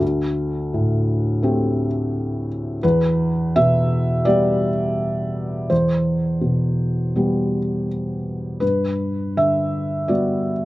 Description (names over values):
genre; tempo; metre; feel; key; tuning
neoclassical minimalist piano; 84 BPM; 4/4; rubato; unclear; A4 = 441 Hz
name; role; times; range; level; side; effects
felt-muted upright piano; solo; 0.0-10.7 s; D2 to E5; -18 LUFS; equal; none
room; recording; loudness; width
light reverb; recorded outdoors, with no room sound; -18 LUFS; side -17 dB against mid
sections
0.0-10.7 A section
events
none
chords
0.0 D7sus4; 2.8 Em7; 8.6 Gmaj7